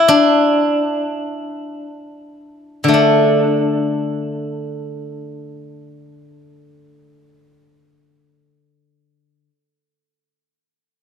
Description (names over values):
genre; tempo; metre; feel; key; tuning
chinese traditional; free time; none; none; unclear; A4 = 440 Hz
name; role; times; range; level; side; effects
steel-string zither; solo; 0.0-9.5 s; D3 to E4; -15 LUFS; left 1 dB; none
room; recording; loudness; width
light reverb; close, detailed microphones; -14 LUFS; side -7 dB against mid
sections
0.0-3.0 A section; 3.0-9.0 B section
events
slowing down 0.0-3.0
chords
none